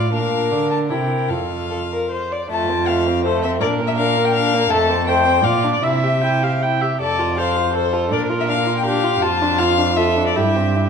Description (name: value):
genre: quick classical-period movement for string quartet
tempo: 147-167 BPM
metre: 3/4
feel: rubato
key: F major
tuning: A4 = 440 Hz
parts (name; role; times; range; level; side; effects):
- rich violin; melody; 0.0-10.9 s; C5 to A5; -21 LUFS; left 5 dB; none
- warm violin; second line; 0.0-10.9 s; A3 to D5; -23 LUFS; left 3 dB; none
- warm viola; accompaniment; 0.0-10.9 s; D4 to G5; -22 LUFS; right 3 dB; none
- warm cello; bass; 0.0-10.9 s; F2 to D3; -22 LUFS; right 3 dB; none
room: wet recital hall reverb, RT60 1.4 s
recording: minimal, uncompressed stereo recording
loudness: -16 LUFS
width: side -6 dB against mid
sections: 0.0-2.5 A section; 2.5-10.9 B section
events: none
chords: 0.1 Bb; 0.9 C7; 1.3 F; 3.6 Bb; 4.7 F; 5.4 Bb; 5.8 C; 7.0 F; 8.1 Bb; 9.2 Dm/F; 10.4 C/G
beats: | 0.14 0.52 0.91 | 1.30 1.71 2.11 | 2.51 2.88 3.25 | 3.62 3.98 4.34 | 4.70 5.07 5.44 | 5.83 6.23 6.62 | 7.01 7.38 7.76 | 8.12 8.49 8.86 | 9.22 9.59 9.97 | 10.36 10.75